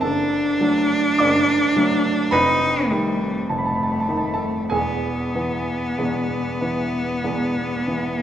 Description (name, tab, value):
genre	classical, romantic duo for cello and grand piano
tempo	47-54 BPM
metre	4/4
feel	rubato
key	unclear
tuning	A4 = 440 Hz
part	clear cello	melody	0.0-8.2 s	G3 to Eb4	-21 LUFS	equal	none
part	warm baby grand piano	accompaniment	0.0-8.2 s	E1 to D6	-22 LUFS	right 1 dB	none
room	moderate scoring stage reverb, RT60 1.5 s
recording	none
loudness	-18 LUFS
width	side -10 dB against mid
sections	0.0-8.2 A section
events	none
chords	0.0 D/F#; 2.3 F7; 4.7 E